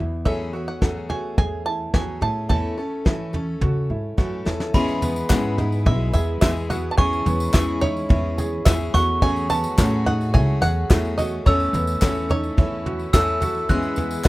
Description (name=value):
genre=indie folk with a building arrangement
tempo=107 BPM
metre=4/4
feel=straight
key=unclear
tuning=A4 = 440 Hz
part: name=fingerpicked steel-string acoustic guitar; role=accompaniment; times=0.0-2.5 s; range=E2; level=-36 LUFS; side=left 2 dB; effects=none
part: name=clear upright piano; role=arpeggios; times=0.0-14.3 s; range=B3 to A4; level=-29 LUFS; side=right 3 dB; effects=none
part: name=upright bass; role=bass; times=0.0-14.3 s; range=B1 to E3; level=-24 LUFS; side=equal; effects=none
part: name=bluegrass banjo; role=melody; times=0.3-14.3 s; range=C#5 to A5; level=-28 LUFS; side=right 2 dB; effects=tape echo
part: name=picked steel-string acoustic guitar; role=accompaniment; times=0.3-14.3 s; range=E3 to A4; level=-29 LUFS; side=left 4 dB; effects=none
part: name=soft brush drum kit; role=drums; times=0.3-14.3 s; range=crash cymbal, kick drum, snare drum, toms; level=-21 LUFS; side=equal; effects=none
part: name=glockenspiel with brass mallets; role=second line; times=4.7-14.3 s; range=B5 to F#6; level=-27 LUFS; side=right 1 dB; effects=none
part: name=warm chamber string section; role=sustained chords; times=4.7-14.3 s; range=E3 to B4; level=-36 LUFS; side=left 1 dB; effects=none
part: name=tambourine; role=percussion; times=4.7-14.3 s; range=none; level=-41 LUFS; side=left 2 dB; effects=none
part: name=group handclap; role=percussion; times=5.3-14.3 s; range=none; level=-30 LUFS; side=left 2 dB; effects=none
room=little or no reverb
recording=rough home demo mix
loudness=-19 LUFS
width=side -19 dB against mid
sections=0.0-4.7 A section; 4.7-14.3 B section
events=drum fill 4.2-4.7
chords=0.0 F#madd9/E; 4.7 E; 7.0 C#m/E; 8.9 F#madd9/E; 11.5 A/E; 13.7 E